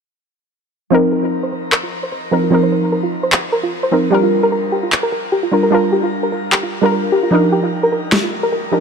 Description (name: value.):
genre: future bass.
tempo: 150 BPM.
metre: 4/4.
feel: swing 55% on 16ths, half-time.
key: unclear.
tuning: A4 = 442 Hz.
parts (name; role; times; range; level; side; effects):
soft round pluck; accompaniment; 0.9-8.8 s; F3 to Bb4; -16 LUFS; right 1 dB; chorus, ping-pong delay.
soft round pluck; arpeggios; 0.9-8.8 s; F4 to C5; -19 LUFS; equal; chorus, ping-pong delay.
electronic handclaps and snare drum; drums; 1.7-8.2 s; none; -21 LUFS; left 1 dB; none.
room: moderate shimmer reverb, RT60 4.8 s.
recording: none.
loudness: -14 LUFS.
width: side -6 dB against mid.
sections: 0.9-8.8 A section.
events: filter sweep on synth arpeggio sound 0.9-8.8.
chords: 0.9 F7sus4; 4.1 Gm7; 7.3 F13sus4.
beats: | 0.92 1.32 1.72 2.12 | 2.52 2.92 3.32 3.72 | 4.12 4.52 4.92 5.32 | 5.72 6.12 6.52 6.92 | 7.32 7.72 8.12 8.52.